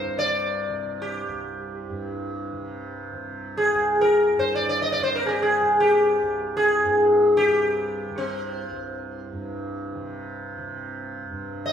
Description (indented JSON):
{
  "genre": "indian classical, Hindustani",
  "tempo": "free time",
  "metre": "none",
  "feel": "none",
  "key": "unclear",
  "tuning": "A4 = 442 Hz",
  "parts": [
    { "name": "sitar", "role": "melody", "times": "0.0-11.7 s", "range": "C4 to Eb5", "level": "-20 LUFS", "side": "equal", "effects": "none" },
    { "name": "tanpura", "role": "drone", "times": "0.0-11.7 s", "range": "C2 to C3", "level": "-33 LUFS", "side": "right 2 dB", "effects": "none" }
  ],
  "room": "wet stone room reverb, RT60 1.3 s",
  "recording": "band playing live in one room",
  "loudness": "-20 LUFS",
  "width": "side -8 dB against mid",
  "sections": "0.0-11.3 A section",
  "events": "none",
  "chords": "none"
}